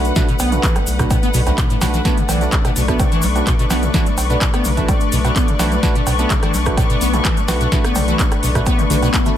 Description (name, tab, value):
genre	acid house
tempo	127 BPM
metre	4/4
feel	straight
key	B minor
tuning	A4 = 439 Hz
part	warm analog pad	sustained chords	0.0-9.4 s	A3 to D5	-25 LUFS	left 4 dB	chorus, vintage 12-bit sampler grit, sidechain pumping
part	percussive organ stab	stabs	0.0-9.4 s	A3 to B4	-25 LUFS	right 4 dB	chorus, dub echo
part	saturated sub bass	bass	0.0-9.1 s	B1	-20 LUFS	equal	sidechain pumping
part	booming analog drum machine	drums	0.0-9.4 s	cowbell, handclaps, hi-hat, rim click, snare drum	-23 LUFS	right 1 dB	none
part	egg shaker	percussion	0.0-9.3 s	none	-31 LUFS	left 4 dB	none
part	bright symphonic string section	texture	0.0-9.4 s	B4 to C#6	-26 LUFS	left 5 dB	sidechain pumping
part	liquid acid bass	riff	0.2-9.3 s	B1 to B3	-22 LUFS	equal	tube saturation, lush chorus
part	electronic kick drum	drums	0.2-9.2 s	none	-18 LUFS	equal	none
part	swell	sound effects	8.9-9.4 s	none	-24 LUFS	left 7 dB	none
room	light reverb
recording	none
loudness	-14 LUFS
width	side -11 dB against mid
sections	0.0-9.4 A section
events	swell 8.9-9.4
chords	0.0 Bm7